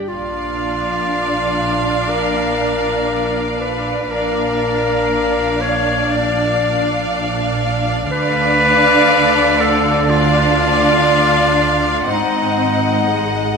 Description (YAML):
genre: cinematic, suspense film score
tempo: 60 BPM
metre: 4/4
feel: straight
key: unclear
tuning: A4 = 441 Hz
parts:
  - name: bright clarinet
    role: second line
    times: 0.0-13.6 s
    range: D#4 to D5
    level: -18 LUFS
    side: left 2 dB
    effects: none
  - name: rich symphonic violin section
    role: melody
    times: 0.1-13.6 s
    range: E#5 to F#5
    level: -22 LUFS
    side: left 1 dB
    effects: none
  - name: rich symphonic violin section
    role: second line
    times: 0.1-13.6 s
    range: D5 to D#5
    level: -22 LUFS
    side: left 3 dB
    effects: none
  - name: rich symphonic viola section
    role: accompaniment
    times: 0.1-13.6 s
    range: G#3 to D4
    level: -20 LUFS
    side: right 2 dB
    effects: none
  - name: dark symphonic cello section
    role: bass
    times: 0.1-13.6 s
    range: G#2 to D3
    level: -24 LUFS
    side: right 3 dB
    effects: none
  - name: rich symphonic double bass section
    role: bass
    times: 0.1-13.6 s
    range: G#1 to D2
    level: -25 LUFS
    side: right 4 dB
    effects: none
room: moderate scoring stage reverb, RT60 1.5 s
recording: minimal, uncompressed stereo recording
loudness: -13 LUFS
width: side -5 dB against mid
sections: 0.0-13.6 A section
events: none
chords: 0.1 A#; 8.1 Dm; 12.1 G#7